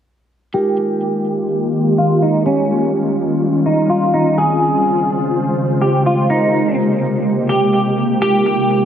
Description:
hip hop; 125 BPM; 4/4; half-time; F minor; A4 = 442 Hz
clean electric guitar; melody; 0.5-8.8 s; Db4 to Ab4; -17 LUFS; right 1 dB; analog chorus, low-pass filter, tape echo
ethereal airy pad; sustained chords; 1.0-8.8 s; C3 to C5; -16 LUFS; equal; ensemble chorus, built-in reverb, low-pass filter
vibraphone with soft mallets; texture; 0.5-8.8 s; G3 to Bb4; -25 LUFS; right 1 dB
light reverb, studio reverb; echo-heavy mix; -13 LUFS; side -9 dB against mid
0.5-8.8 A section
filter sweep 0.5-8.8
0.5 Fm11; 2.5 Eb9; 4.4 Dbmaj7; 6.3 Abmaj9; 8.2 Fm11

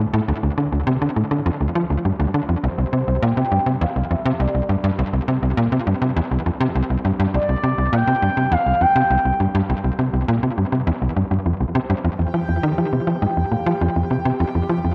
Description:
ambient, sequencer-driven space music; 102 BPM; 4/4; straight; A4 = 442 Hz
tight sequencer bass; riff; 0.0-14.9 s; C2 to F3; -21 LUFS; equal; vintage 12-bit sampler grit, tape echo
expressive portamento lead; melody; 2.6-14.3 s; C5 to G5; -25 LUFS; equal; subtle chorus, cassette tape, tape echo
bubbling stepped-filter texture; texture; 12.2-14.9 s; G4 to G5; -30 LUFS; equal; chorus, built-in reverb
wet spring reverb, RT60 1.2 s, digital ambience; home recording on cassette; -20 LUFS; mono
0.0-12.0 A section; 12.0-14.9 B section
0.0 Dm; 2.6 C5; 12.0 Fsus2

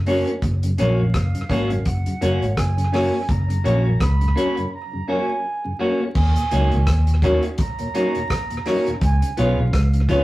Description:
roots reggae; 84 BPM; 4/4; swing 56% on 16ths; F# major; A4 = 440 Hz
vintage muted fingered electric bass; bass; 0.0-10.2 s; F#1 to D#2; -19 LUFS; equal
clean electric guitar; accompaniment; 0.1-10.2 s; A#3 to F#4; -24 LUFS; equal
mellow tonewheel organ; accompaniment; 0.1-10.2 s; D#2 to D#4; -29 LUFS; left 1 dB; chorus vibrato, slow rotary speaker, tape echo
clear upright piano; stabs; 0.1-10.2 s; C#4 to C#5; -24 LUFS; left 1 dB
damped 70s drum kit; drums; 0.1-10.2 s; crash cymbal, hi-hat, kick drum, rim click; -25 LUFS; equal; tape echo
mellow concert flute; melody; 0.8-10.1 s; E#5 to B5; -29 LUFS; right 4 dB
wet studio reverb, RT60 0.5 s; rough rehearsal-room recording, vinyl crackle; -18 LUFS; side -17 dB against mid
0.0-6.2 A section; 6.2-10.2 B section
break 4.7-6.2
0.0 F#; 6.2 D#m7; 9.0 C#7

